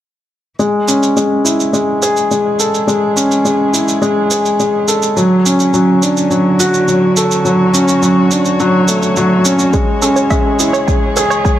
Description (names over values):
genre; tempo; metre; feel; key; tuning
piano and strings electronica; 105 BPM; 4/4; straight; A major; A4 = 439 Hz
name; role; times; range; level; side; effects
warm string quartet; sustained chords; 0.6-11.6 s; C#2 to C#5; -23 LUFS; left 2 dB; sidechain pumping
warm upright piano; riff; 0.6-11.6 s; F#3 to A4; -11 LUFS; equal; digital delay
shaker; drums; 0.6-11.6 s; none; -19 LUFS; right 3 dB; none
analog pluck; arpeggios; 9.7-11.5 s; G#4 to G#5; -19 LUFS; right 4 dB; chorus, sidechain pumping, digital delay
electronic kick drum; drums; 9.7-11.6 s; none; -15 LUFS; equal; none
room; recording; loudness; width
wet echo chamber reverb, RT60 1.4 s; none; -10 LUFS; side -12 dB against mid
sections
0.6-11.6 A section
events
fade-in on string quartet 0.6-11.6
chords
0.6 Amaj7; 5.2 Dmaj7; 9.7 Amaj7/C# (rootless)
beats
| 0.60 1.17 1.74 2.31 | 2.88 3.46 4.03 4.60 | 5.17 5.74 6.31 6.88 | 7.46 8.03 8.60 9.17 | 9.74 10.31 10.88 11.46